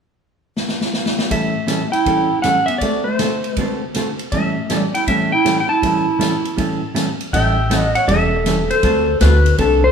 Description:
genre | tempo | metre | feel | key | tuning
country, western swing | 160 BPM | 4/4 | swing 66% on 8ths | A mixolydian | A4 = 436 Hz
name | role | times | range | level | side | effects
swinging big-band drum kit | drums | 0.6-9.7 s | hi-hat, kick drum, ride cymbal, snare drum | -24 LUFS | left 1 dB | none
clean lap steel guitar | melody | 1.3-9.9 s | A4 to A5 | -19 LUFS | left 1 dB | none
breathy clarinet | second line | 1.3-9.9 s | A3 to E5 | -21 LUFS | right 2 dB | none
hollow-body jazz guitar | accompaniment | 1.3-9.8 s | A2 to A4 | -21 LUFS | right 2 dB | none
upright bass | bass | 7.3-9.9 s | E1 to D2 | -16 LUFS | equal | none
room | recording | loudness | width
wet large studio reverb, RT60 1.2 s | band playing live in one room | -15 LUFS | side -7 dB against mid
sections
0.0-1.3 A section; 1.3-7.3 B section; 7.3-9.9 C section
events
drum fill 0.6-1.3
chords
0.0 N.C.; 1.3 A7; 2.8 D7; 4.3 A7; 8.8 D7

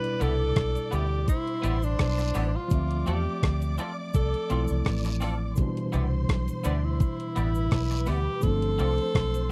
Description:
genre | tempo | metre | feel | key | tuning
lovers rock reggae | 84 BPM | 4/4 | swing 54% on 16ths | C major | A4 = 439 Hz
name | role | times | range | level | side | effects
warm tenor saxophone | melody | 0.0-9.5 s | D4 to B4 | -33 LUFS | equal | tape echo
warm studio string section | second line | 0.0-9.5 s | B4 to D6 | -42 LUFS | equal | none
tine electric piano | accompaniment | 0.0-9.5 s | B2 to E5 | -36 LUFS | equal | overdrive
gated 80s digital drum machine | drums | 0.0-9.5 s | hi-hat, kick drum, rim click | -28 LUFS | equal | none
twangy electric guitar | stabs | 0.2-9.5 s | B3 to D5 | -38 LUFS | equal | analog chorus
vintage muted fingered electric bass | bass | 0.2-9.5 s | G1 to E2 | -29 LUFS | equal | none
cabasa and guiro | percussion | 0.2-9.5 s | none | -46 LUFS | equal | none
room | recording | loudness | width
digital ambience | dry, close 1970s-style studio recording | -27 LUFS | mono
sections
0.0-9.5 A section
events
none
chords
0.0 Cmaj9; 2.7 Dm7; 5.6 Cmaj9; 8.4 G9sus4

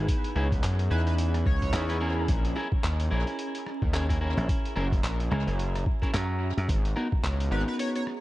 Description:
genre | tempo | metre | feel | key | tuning
glitch hop | 109 BPM | 4/4 | swing 58% on 16ths | unclear | A4 = 439 Hz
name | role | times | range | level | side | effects
semi-hollow electric guitar | stabs | 0.0-8.0 s | B3 to B4 | -34 LUFS | equal | sidechain pumping, tape echo
slap bass | bass | 0.0-6.7 s | A#1 to F#2 | -27 LUFS | equal | none
ethereal airy pad | texture | 0.0-8.2 s | B3 to B5 | -38 LUFS | equal | ensemble chorus, built-in reverb, sidechain pumping
boom bap sampler-style drum kit | drums | 0.1-8.2 s | handclaps, hi-hat, rim click | -38 LUFS | equal | tape echo
electronic kick drum | drums | 0.1-7.2 s | none | -28 LUFS | equal | none
gritty driven synth bass | bass | 0.4-7.6 s | F#1 to F#2 | -27 LUFS | equal | none
sync lead | melody | 0.9-2.2, 7.5-8.0 s | B4 to C#5 | -37 LUFS | equal | analog chorus, tape echo
room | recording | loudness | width
light reverb | echo-heavy mix, vinyl crackle, nothing above 11.0 kHz | -25 LUFS | side -17 dB against mid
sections
0.0-8.2 A section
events
none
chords
0.1 C#m9; 2.3 A#m7b5; 4.5 F#7; 6.7 G#m9

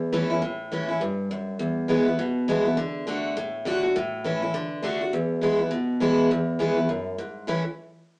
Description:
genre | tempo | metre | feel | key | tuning
rock | 204 BPM | 4/4 | swing 60% on 8ths | A major | A4 = 441 Hz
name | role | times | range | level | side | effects
picked steel-string acoustic guitar | solo | 0.0-7.6 s | E2 to F#4 | -23 LUFS | equal | none
room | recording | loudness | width
wet large studio reverb, RT60 0.8 s | band playing live in one room, small speaker sound | -23 LUFS | side -27 dB against mid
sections
0.0-6.3 A section; 6.3-7.5 B section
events
none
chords
0.0 A; 1.6 E; 2.8 D; 4.0 A; 4.5 D; 5.1 E; 7.5 A

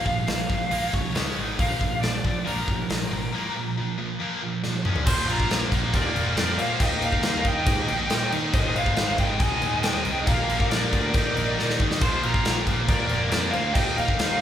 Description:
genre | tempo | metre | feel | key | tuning
hard rock | 138 BPM | 4/4 | straight | Bb mixolydian | A4 = 440 Hz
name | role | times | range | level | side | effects
nasal lead guitar with a parked wah | melody | 0.0-14.4 s | Bb4 to Ab5 | -29 LUFS | left 1 dB | overdrive
heavy high-gain guitar | riff | 0.0-14.4 s | Ab2 to Eb4 | -29 LUFS | left 6 dB | distortion
scooped high-gain guitar | riff | 0.0-14.4 s | Ab2 to Eb4 | -30 LUFS | right 5 dB | distortion
modern bright picked electric bass | bass | 0.1-14.4 s | F1 to Eb3 | -31 LUFS | equal | none
big rock drum kit | drums | 0.1-14.3 s | crash cymbal, hi-hat, kick drum, snare drum, toms | -25 LUFS | equal | none
nasal lead guitar with a parked wah | second line | 5.1-14.4 s | F4 to Eb5 | -33 LUFS | right 2 dB | overdrive
sweeping resonant pad | sustained chords | 5.1-14.4 s | Ab3 to C5 | -40 LUFS | left 1 dB | none
room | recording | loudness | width
moderate large studio reverb, RT60 1.3 s | band playing live in one room | -21 LUFS | side -10 dB against mid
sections
0.0-5.1 A section; 5.1-14.4 B section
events
break 3.3-5.1; drum fill 4.6-5.1, 11.6-12.0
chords
0.0 Bb5; 1.2 Db5; 1.4 Ab5; 1.6 Bb5; 4.9 Db5; 5.1 Bb; 6.8 Eb; 8.5 Ab; 10.3 Bb; 11.1 Eb; 12.0 Bb; 13.8 Eb

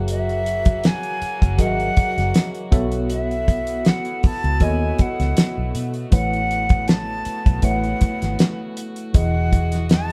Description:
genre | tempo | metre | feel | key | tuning
lush 1970s-style soul | 79 BPM | 4/4 | swing 54% on 16ths | unclear | A4 = 441 Hz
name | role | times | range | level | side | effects
mellow tine electric piano | accompaniment | 0.0-10.1 s | E3 to F#5 | -29 LUFS | equal | none
muted French horn section | sustained chords | 0.0-10.1 s | C#3 to D#5 | -36 LUFS | equal | none
vintage muted fingered electric bass | bass | 0.0-10.1 s | E1 to B2 | -26 LUFS | equal | none
breathy silver concert flute | melody | 0.1-10.1 s | E5 to A5 | -28 LUFS | equal | none
damped 70s drum kit | drums | 0.1-10.1 s | hi-hat, kick drum, snare drum | -19 LUFS | equal | none
room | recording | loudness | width
moderate studio reverb, RT60 0.6 s | band playing live in one room | -20 LUFS | mono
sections
0.0-10.1 A section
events
none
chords
0.0 F#7; 2.7 B7sus4; 6.1 A69; 9.1 Emaj9

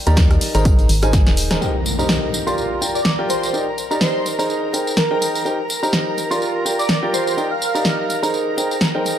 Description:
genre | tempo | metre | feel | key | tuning
piano house | 125 BPM | 4/4 | swing 56% on 16ths | Eb major | A4 = 439 Hz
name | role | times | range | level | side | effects
warm grand piano | riff | 0.1-9.2 s | Eb4 to C6 | -21 LUFS | equal | sidechain pumping, dub echo
organ-like FM bass | bass | 0.1-1.6 s | Eb1 to Eb2 | -17 LUFS | equal | sidechain pumping
punchy analog drum machine | drums | 0.1-9.2 s | hi-hat, rim click, snare drum, tambourine | -22 LUFS | equal | none
tambourine | percussion | 0.1-1.6 s | none | -30 LUFS | left 1 dB | none
electronic kick drum | drums | 0.2-1.2 s | none | -15 LUFS | equal | none
muted chamber violin section | sustained chords | 1.6-9.2 s | Bb4 to Bb5 | -27 LUFS | equal | sidechain pumping
impact | sound effects | 1.6-3.5 s | none | -26 LUFS | equal | none
airy dreamy lead | melody | 2.9-8.2 s | Bb4 to F5 | -24 LUFS | right 1 dB | chorus, dub echo
room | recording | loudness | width
moderate plate reverb, RT60 1.6 s | none | -16 LUFS | side -10 dB against mid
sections
0.0-1.6 A section; 1.6-9.2 B section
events
drum fill 1.1-1.6; impact 1.6-3.5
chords
0.0 Ebmaj7; 0.7 Abadd9; 1.6 Cm7; 2.6 Gm7; 3.5 Ebmaj7; 4.5 Abmaj9; 5.5 Cm7; 6.4 Gm7; 7.4 Ebmaj7; 8.3 Abmaj9

